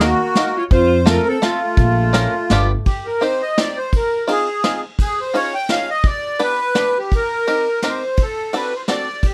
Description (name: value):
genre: musette waltz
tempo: 170 BPM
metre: 3/4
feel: swing 54% on 8ths, rubato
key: C minor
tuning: A4 = 440 Hz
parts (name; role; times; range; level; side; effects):
- accordion; melody; 0.0-9.3 s; F4 to G5; -21 LUFS; equal; light tremolo tuning, slapback echo
- dark violin; second line; 0.0-2.7 s; A3 to F4; -27 LUFS; equal; none
- bluegrass banjo; accompaniment; 0.0-9.1 s; A3 to C5; -24 LUFS; equal; none
- upright bass; bass; 0.0-2.7 s; G1 to F2; -20 LUFS; equal; none
- vintage brush drum kit; drums; 0.0-9.3 s; hi-hat, kick drum, ride cymbal, snare drum; -21 LUFS; equal; none
room: light reverb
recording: none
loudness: -18 LUFS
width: mono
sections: 0.0-2.9 A section; 2.9-9.3 B section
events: none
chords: 0.0 Ebm; 0.7 F; 1.8 Bbm; 2.5 G7; 2.9 Cm; 3.9 Ab6; 5.0 Dbadd9; 6.0 G; 7.1 Cm7; 8.2 D7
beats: 0.01 0.36 | 0.72 1.07 1.42 | 1.78 2.14 2.50 | 2.87 3.22 3.58 | 3.93 4.29 4.64 | 4.99 5.34 5.69 | 6.04 6.40 6.75 | 7.12 7.47 7.83 | 8.18 8.53 8.88 | 9.23